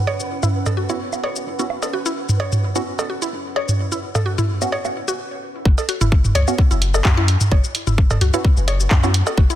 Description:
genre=minimal techno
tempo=129 BPM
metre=4/4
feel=swing 54% on 16ths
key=unclear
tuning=A4 = 443 Hz
part: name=deep dark ambient pad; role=texture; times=0.0-5.2 s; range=C#4 to F#5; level=-32 LUFS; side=right 3 dB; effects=chorus, built-in reverb, sidechain pumping
part: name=flickering grainy texture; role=texture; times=0.0-5.2 s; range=B4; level=-37 LUFS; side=right 4 dB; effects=built-in reverb, sidechain pumping
part: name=mallet-like synth pluck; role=riff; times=0.1-9.5 s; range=E4 to C#5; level=-26 LUFS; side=left 1 dB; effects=chorus, sidechain pumping, dub echo
part: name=punchy sub bass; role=bass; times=0.1-9.5 s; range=F#1 to F#2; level=-20 LUFS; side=left 1 dB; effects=sidechain pumping, high-pass filter
part: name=electronic cowbell, toms and woodblock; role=percussion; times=0.1-9.4 s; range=none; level=-22 LUFS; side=right 1 dB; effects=digital delay
part: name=punchy analog drum machine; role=drums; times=0.2-9.6 s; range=cabasa, handclaps, hi-hat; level=-26 LUFS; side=left 1 dB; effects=none
part: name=wavetable chord stab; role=stabs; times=0.9-9.1 s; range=B3 to F#4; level=-27 LUFS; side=right 2 dB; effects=digital delay
part: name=electronic kick drum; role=drums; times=5.7-9.5 s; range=none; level=-15 LUFS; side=equal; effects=none
room=light reverb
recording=dense, heavily limited modern master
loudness=-16 LUFS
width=side -12 dB against mid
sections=0.0-5.7 A section; 5.7-9.6 B section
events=stop 5.2-5.7; drop 5.7-9.6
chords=0.0 F#sus4; 5.7 F#5

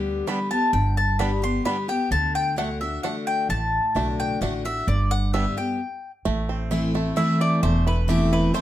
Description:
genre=bluegrass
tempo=130 BPM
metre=3/4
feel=straight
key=G major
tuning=A4 = 440 Hz
part: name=picked steel-string acoustic guitar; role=accompaniment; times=0.0-8.6 s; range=E2 to G4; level=-25 LUFS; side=left 1 dB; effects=none
part: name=upright bass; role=bass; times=0.0-8.5 s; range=E1 to D2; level=-25 LUFS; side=right 1 dB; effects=none
part: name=bluegrass banjo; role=melody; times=0.3-8.6 s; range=G3 to E4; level=-30 LUFS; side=right 6 dB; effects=none
part: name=mandolin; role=melody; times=0.3-8.6 s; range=G4 to C6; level=-25 LUFS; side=left 1 dB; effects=none
room=light reverb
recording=close, detailed microphones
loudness=-21 LUFS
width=side -13 dB against mid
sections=0.0-6.3 A section; 6.3-8.6 B section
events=stop 5.8-6.3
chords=0.0 G; 2.1 D; 4.9 G; 6.3 Am

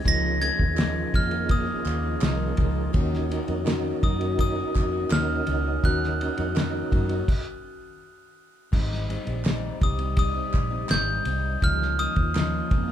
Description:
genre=indie pop, bedroom pop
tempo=83 BPM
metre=4/4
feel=straight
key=Ab mixolydian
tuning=A4 = 442 Hz
part: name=glockenspiel with hard plastic mallets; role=melody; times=0.0-12.9 s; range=Eb6 to Bb6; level=-29 LUFS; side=equal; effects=none
part: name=mellow tonewheel organ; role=accompaniment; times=0.0-7.3 s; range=Db4 to Eb5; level=-32 LUFS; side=right 5 dB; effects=chorus vibrato, fast rotary speaker
part: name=nylon-string guitar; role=accompaniment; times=0.0-12.9 s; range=Ab2 to Gb4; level=-32 LUFS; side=left 4 dB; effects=warbly pitch drift
part: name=warbly tape-like pad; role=sustained chords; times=0.0-12.9 s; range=C3 to G4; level=-36 LUFS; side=left 1 dB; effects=chorus, built-in reverb, phaser
part: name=vintage muted fingered electric bass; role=bass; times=0.1-12.9 s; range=Ab1 to Gb2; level=-28 LUFS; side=equal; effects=none
part: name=cloth-damped thuddy drum kit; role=drums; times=0.1-12.9 s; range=crash cymbal, hi-hat, kick drum, ride cymbal, snare drum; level=-26 LUFS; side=equal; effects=none
part: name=group handclap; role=percussion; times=0.8-12.5 s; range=none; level=-40 LUFS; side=right 6 dB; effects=none
room=moderate large studio reverb, RT60 1.3 s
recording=band playing live in one room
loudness=-22 LUFS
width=side -10 dB against mid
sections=0.0-8.7 A section; 8.7-12.9 A section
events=stop 7.3-8.7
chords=0.1 Db69; 2.9 Ebm7; 8.7 Abmaj7; 11.6 Db69

